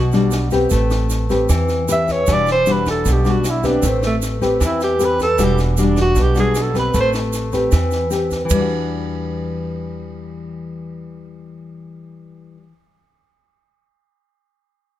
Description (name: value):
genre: bossa nova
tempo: 154 BPM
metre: 4/4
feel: straight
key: E minor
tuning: A4 = 440 Hz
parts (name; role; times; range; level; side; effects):
- breathy alto saxophone; melody; 0.0-7.1 s; A3 to E5; -19 LUFS; right 1 dB; none
- nylon-string guitar; accompaniment; 0.0-12.7 s; B2 to B4; -20 LUFS; left 2 dB; none
- upright bass; bass; 0.0-12.6 s; E1 to E2; -21 LUFS; right 1 dB; none
- compact cocktail drum kit; drums; 0.1-8.6 s; kick drum, ride cymbal, rim click, snare drum; -26 LUFS; right 1 dB; none
- egg shaker; percussion; 0.1-8.6 s; none; -32 LUFS; right 9 dB; none
room: light reverb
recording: none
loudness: -15 LUFS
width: side -13 dB against mid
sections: 0.0-8.5 A section; 8.5-11.6 B section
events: alto saxophone solo 0.0-8.5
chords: 0.0 Em9 (rootless); 0.7 Am9; 2.3 Em9; 3.8 Am9; 5.4 Em9; 6.9 Am9; 8.5 Em9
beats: 0.33 | 0.72 1.11 1.50 1.88 | 2.27 2.66 3.05 3.44 | 3.83 4.22 4.61 5.00 | 5.39 5.78 6.17 6.56 | 6.95 7.34 7.73 8.12 | 8.51 8.90 9.29 9.68 | 10.07 10.46 10.85 11.24